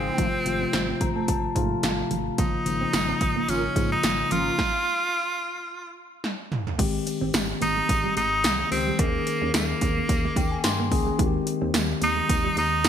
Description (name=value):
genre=1980s-style pop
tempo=109 BPM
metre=4/4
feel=swing 55% on 16ths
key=Ab major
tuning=A4 = 441 Hz
part: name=edgy tenor saxophone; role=melody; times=0.0-12.9 s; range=Bb3 to F4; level=-26 LUFS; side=right 1 dB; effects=none
part: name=mellow tine electric piano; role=accompaniment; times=0.0-12.9 s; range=C3 to C6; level=-28 LUFS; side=left 5 dB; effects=none
part: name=mellow synth brass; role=stabs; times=0.0-4.5 s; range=C4 to Bb4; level=-33 LUFS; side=right 1 dB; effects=chorus, phaser
part: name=solid FM bass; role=bass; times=0.0-12.9 s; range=Ab1 to Ab2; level=-31 LUFS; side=right 1 dB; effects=none
part: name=mellow electric guitar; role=riff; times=0.2-12.7 s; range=F3 to Eb4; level=-34 LUFS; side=right 5 dB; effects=ensemble chorus
part: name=80s electronic pad drums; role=drums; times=0.2-12.9 s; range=crash cymbal, hi-hat, kick drum, snare drum, tambourine, toms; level=-26 LUFS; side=right 1 dB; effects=gated reverb on snare and toms
part: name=tambourine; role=percussion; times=2.4-12.9 s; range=none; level=-41 LUFS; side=right 5 dB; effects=none
room=moderate lush hall reverb, RT60 2.2 s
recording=bright 1980s-style digital production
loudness=-22 LUFS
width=side -9 dB against mid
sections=0.0-6.8 A section; 6.8-12.9 B section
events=tine electric piano fill 0.7-2.4, 10.1-11.2; stop 4.6-6.8; drum fill 6.2-6.8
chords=0.2 F/Ab; 2.4 Bbm/Ab; 4.6 N.C.; 6.8 Abmaj7; 9.0 Eb7sus4; 11.2 Abmaj7/Eb